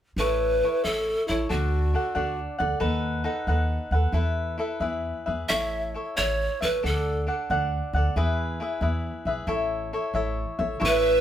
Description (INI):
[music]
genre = mexican folk, mariachi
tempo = 90 BPM (dotted quarters)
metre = 6/8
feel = rubato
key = A major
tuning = A4 = 440 Hz
[part]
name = breathy pan flute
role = melody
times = 0.2-2.4, 5.5-7.3, 10.9-11.2 s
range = E4 to E5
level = -24 LUFS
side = equal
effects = none
[part]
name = cavaquinho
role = accompaniment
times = 0.2-11.2 s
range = D4 to F#5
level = -28 LUFS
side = left 1 dB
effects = none
[part]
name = upright bass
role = bass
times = 0.2-11.2 s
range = A1 to E2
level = -27 LUFS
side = equal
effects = none
[part]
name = warm studio violin section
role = second line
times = 10.8-11.2 s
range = E5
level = -30 LUFS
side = right 6 dB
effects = none
[sound]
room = light reverb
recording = band playing live in one room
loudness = -24 LUFS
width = side -10 dB against mid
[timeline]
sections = 0.2-10.8 A section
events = none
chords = 0.2 A; 1.5 D; 2.8 B7/D#; 4.1 Esus4; 4.8 E; 5.5 A; 6.8 D; 8.2 E; 9.5 A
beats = | 0.18 0.85 | 1.52 2.17 | 2.83 3.48 | 4.15 4.82 | 5.50 6.18 | 6.84 7.50 | 8.16 8.82 | 9.48 10.15 | 10.82